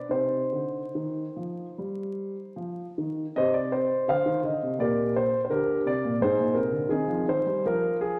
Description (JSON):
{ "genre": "classical, baroque-style suite movement for grand piano", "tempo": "71-86 BPM", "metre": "4/4", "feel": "rubato", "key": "C minor", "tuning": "A4 = 440 Hz", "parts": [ { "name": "warm concert grand piano", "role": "solo", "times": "0.0-8.2 s", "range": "Ab2 to F5", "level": "-27 LUFS", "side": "equal", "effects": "none" } ], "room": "wet recital hall reverb, RT60 1.6 s", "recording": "vinyl crackle", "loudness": "-27 LUFS", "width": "mono", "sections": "0.0-3.3 A section; 3.3-8.2 B section", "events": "none", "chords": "0.1 Cm; 4.8 Gm/Bb; 6.2 Ab" }